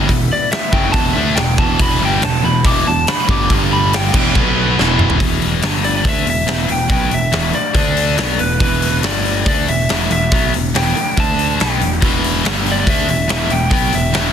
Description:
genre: hard rock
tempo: 141 BPM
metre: 4/4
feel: straight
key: E minor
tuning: A4 = 439 Hz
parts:
  - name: tonewheel organ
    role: sustained chords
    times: 0.0-5.2 s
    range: E3 to B4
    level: -30 LUFS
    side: right 1 dB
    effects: none
  - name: heavy high-gain guitar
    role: riff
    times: 0.0-5.2, 12.0-14.3 s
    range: E2 to D4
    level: -22 LUFS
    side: right 1 dB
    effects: distortion
  - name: overdriven electric guitar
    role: riff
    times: 0.0-14.3 s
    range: E2 to D4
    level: -21 LUFS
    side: left 10 dB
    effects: none
  - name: overdriven semi-hollow guitar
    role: riff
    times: 0.0-14.3 s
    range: E2 to D4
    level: -23 LUFS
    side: right 9 dB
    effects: spring reverb
  - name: picked electric bass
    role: bass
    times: 0.0-14.3 s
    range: E1 to D2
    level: -20 LUFS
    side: equal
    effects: none
  - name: big rock drum kit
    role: drums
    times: 0.1-14.2 s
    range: crash cymbal, hi-hat, kick drum, snare drum, toms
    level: -17 LUFS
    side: equal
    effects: soft clipping on snare
  - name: lightly driven lead guitar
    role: melody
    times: 0.3-14.3 s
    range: B4 to D6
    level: -20 LUFS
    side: equal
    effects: slapback echo
room: small room reverb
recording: dense, heavily limited modern master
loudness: -13 LUFS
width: side -8 dB against mid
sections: 0.0-5.2 A section; 5.2-14.3 B section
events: lead electric guitar solo 0.0-5.2; drum fill 4.8-5.2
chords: 0.0 Em; 3.5 G5; 4.1 Em; 4.4 B5; 4.8 E5; 5.6 G5; 6.1 E5; 7.8 D5; 8.2 E5; 9.0 G5; 9.5 Em; 11.2 D5; 11.6 E5; 12.4 G5; 12.9 E5

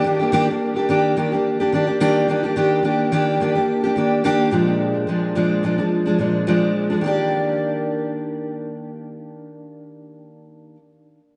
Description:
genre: indie pop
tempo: 107 BPM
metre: 4/4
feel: swing 55% on 16ths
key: Eb major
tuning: A4 = 440 Hz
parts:
  - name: fingerpicked steel-string acoustic guitar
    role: solo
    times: 0.0-10.8 s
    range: Bb2 to G4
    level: -20 LUFS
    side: equal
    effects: lush chorus, vibrato effect, tape echo
room: wet lush hall reverb, RT60 2.3 s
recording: dreamy mix soaked in reverb, nothing above 11.0 kHz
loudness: -20 LUFS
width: mono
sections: 0.0-2.6 A section; 2.6-7.0 B section; 7.0-9.3 C section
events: none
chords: 0.0 Ebmaj7; 4.5 Bb7; 7.0 Ebmaj7

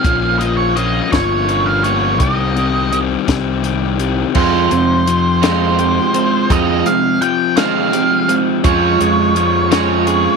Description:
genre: indie rock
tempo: 56 BPM (dotted quarters)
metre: 6/8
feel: straight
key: unclear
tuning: A4 = 440 Hz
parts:
  - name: octave-fuzz lead guitar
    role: melody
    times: 0.0-10.4 s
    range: C5 to G5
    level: -17 LUFS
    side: right 3 dB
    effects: distortion, slapback echo
  - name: overdriven semi-hollow guitar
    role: riff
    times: 0.0-10.4 s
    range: F2 to Ab4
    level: -18 LUFS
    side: left 12 dB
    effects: none
  - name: fuzz fingered electric bass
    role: bass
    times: 0.0-10.3 s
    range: G1 to F2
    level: -19 LUFS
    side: right 2 dB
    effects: overdrive
  - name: compact cocktail drum kit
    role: drums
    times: 0.0-10.2 s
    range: crash cymbal, hi-hat, kick drum, snare drum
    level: -18 LUFS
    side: left 2 dB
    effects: none
  - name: crunchy overdriven guitar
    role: riff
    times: 4.4-10.4 s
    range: Ab3 to F4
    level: -17 LUFS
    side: right 16 dB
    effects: wide subtle chorus, slapback echo
  - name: bright tonewheel organ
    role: sustained chords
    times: 8.6-10.4 s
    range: Ab3 to Db5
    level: -27 LUFS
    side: right 1 dB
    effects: chorus vibrato, fast rotary speaker
room: light reverb, small room ambience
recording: 1960s-style stereo with parts hard left and right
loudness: -12 LUFS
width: side -4 dB against mid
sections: 0.0-4.4 A section; 4.4-10.4 B section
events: none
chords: 0.0 Bbm; 2.2 Cm; 4.4 Fmadd9; 8.6 Db/F

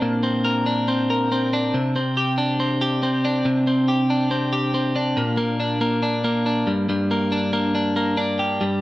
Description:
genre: indie pop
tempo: 140 BPM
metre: 4/4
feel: straight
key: Bb major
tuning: A4 = 440 Hz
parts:
  - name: twelve-string electric guitar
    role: solo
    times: 0.0-8.8 s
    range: G2 to Bb4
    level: -19 LUFS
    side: equal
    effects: none
room: moderate club reverb, RT60 0.7 s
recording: none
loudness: -19 LUFS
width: side -17 dB against mid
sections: 0.0-5.2 A section; 5.2-8.8 B section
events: none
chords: 0.0 Bbadd9; 1.7 Csus2; 5.2 Bb; 6.7 Gm

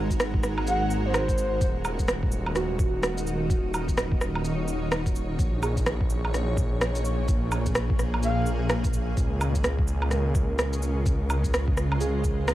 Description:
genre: future garage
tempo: 127 BPM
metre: 4/4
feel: swing 61% on 16ths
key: Eb dorian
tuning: A4 = 440 Hz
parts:
  - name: muted felt-like synth keys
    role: accompaniment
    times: 0.0-12.5 s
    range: Eb4 to Bb4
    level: -36 LUFS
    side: right 3 dB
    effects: chorus, sidechain pumping, dub echo
  - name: granular cloud pad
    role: sustained chords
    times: 0.0-12.5 s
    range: Bb2 to Db5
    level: -32 LUFS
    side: equal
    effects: built-in reverb, sidechain pumping
  - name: swelling detuned saw bass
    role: bass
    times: 0.0-12.5 s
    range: Eb1 to Db2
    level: -28 LUFS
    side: equal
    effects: sidechain pumping
  - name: electronic kick drum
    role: drums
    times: 0.1-12.4 s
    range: none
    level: -26 LUFS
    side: equal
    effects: studio ambience
  - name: electronic shaker, rim click, cabasa and woodblock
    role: drums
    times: 0.1-12.5 s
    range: none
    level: -29 LUFS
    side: right 1 dB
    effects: overdrive, studio ambience
  - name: breathy flute-like synth lead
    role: melody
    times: 0.7-1.7, 8.2-8.5 s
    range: C5 to Gb5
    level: -32 LUFS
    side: equal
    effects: lush chorus, dub echo
room: digital ambience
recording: vinyl crackle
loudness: -23 LUFS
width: side -14 dB against mid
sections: 0.0-12.5 A section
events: none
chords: 0.0 Ab9; 1.6 Ebm7; 5.4 Bbm7; 9.2 Dbmaj7

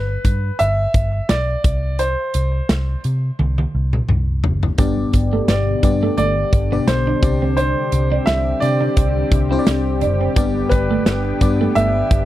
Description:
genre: 1980s-style pop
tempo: 86 BPM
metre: 4/4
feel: swing 55% on 16ths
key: G major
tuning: A4 = 442 Hz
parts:
  - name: clear concert grand piano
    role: melody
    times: 0.0-12.2 s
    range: B4 to E5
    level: -22 LUFS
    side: right 1 dB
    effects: none
  - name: vintage muted picked electric bass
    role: bass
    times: 0.0-12.2 s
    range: F#1 to C3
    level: -20 LUFS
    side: equal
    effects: none
  - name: big rock drum kit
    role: drums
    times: 0.2-12.2 s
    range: hi-hat, kick drum, snare drum, toms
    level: -18 LUFS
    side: equal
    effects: none
  - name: FM electric piano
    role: accompaniment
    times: 4.8-12.2 s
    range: G2 to D5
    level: -22 LUFS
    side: left 4 dB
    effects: chorus
  - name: lush unison pad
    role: sustained chords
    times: 4.8-12.2 s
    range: B2 to G4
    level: -26 LUFS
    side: equal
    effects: chorus
  - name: twelve-string electric guitar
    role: riff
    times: 4.8-12.1 s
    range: G3 to E4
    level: -25 LUFS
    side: right 7 dB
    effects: lush chorus
room: little or no reverb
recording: dry, close 1970s-style studio recording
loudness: -15 LUFS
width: side -14 dB against mid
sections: 0.0-12.2 A section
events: drum fill 3.4-4.8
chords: 0.0 G; 1.6 N.C.; 4.8 G; 7.2 Csus2; 10.4 G

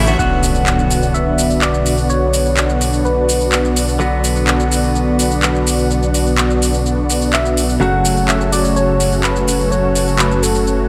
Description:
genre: EDM, festival progressive house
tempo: 126 BPM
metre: 4/4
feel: straight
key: B minor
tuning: A4 = 440 Hz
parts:
  - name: direct-recorded clean electric guitar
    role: accompaniment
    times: 0.0-10.9 s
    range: C#3 to F#4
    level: -24 LUFS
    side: equal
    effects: none
  - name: lush unison pad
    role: sustained chords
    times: 0.0-10.9 s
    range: F#3 to A4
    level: -26 LUFS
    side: equal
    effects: chorus, vintage 12-bit sampler grit
  - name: dense compressed supersaw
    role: riff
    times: 0.0-10.9 s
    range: A3 to F#5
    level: -22 LUFS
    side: equal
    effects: low-pass filter, digital delay
  - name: detuned saw bass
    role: bass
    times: 0.0-10.9 s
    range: F#1 to B1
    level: -21 LUFS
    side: equal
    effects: none
  - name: house drum kit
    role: drums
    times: 0.1-10.8 s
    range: handclaps, hi-hat, shaker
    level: -22 LUFS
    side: equal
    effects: none
  - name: soft struck synth lead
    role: melody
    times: 0.2-3.8, 7.3-10.9 s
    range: A4 to F#5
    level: -22 LUFS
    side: equal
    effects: chorus, cassette tape, digital delay
  - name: impact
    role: sound effects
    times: 0.2-2.1 s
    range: none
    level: -26 LUFS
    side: equal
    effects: none
room: moderate huge ambient reverb, RT60 4.4 s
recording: none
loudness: -15 LUFS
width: mono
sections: 0.2-10.9 A section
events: impact 0.2-2.1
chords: 0.2 Bm; 7.8 F#m

